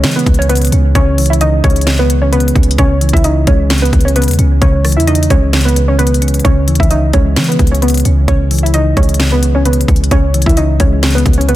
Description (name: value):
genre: hip hop, trap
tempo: 131 BPM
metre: 4/4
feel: half-time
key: C# minor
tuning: A4 = 440 Hz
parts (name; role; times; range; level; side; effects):
- warbly dusty pluck; melody; 0.0-11.6 s; B3 to E5; -15 LUFS; equal; chorus, tape echo
- soft electric-piano-like synth keys; accompaniment; 0.0-11.6 s; C#3 to C#4; -17 LUFS; equal; chorus
- warm 808-style bass; bass; 0.0-11.6 s; C#2 to E3; -13 LUFS; equal; none
- trap drum kit; drums; 0.0-11.6 s; hi-hat, kick drum, rim click, snare drum; -14 LUFS; equal; none
room: digital ambience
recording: dense, heavily limited modern master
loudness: -9 LUFS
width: side -15 dB against mid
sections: 0.0-11.6 A section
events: none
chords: 0.0 C#m7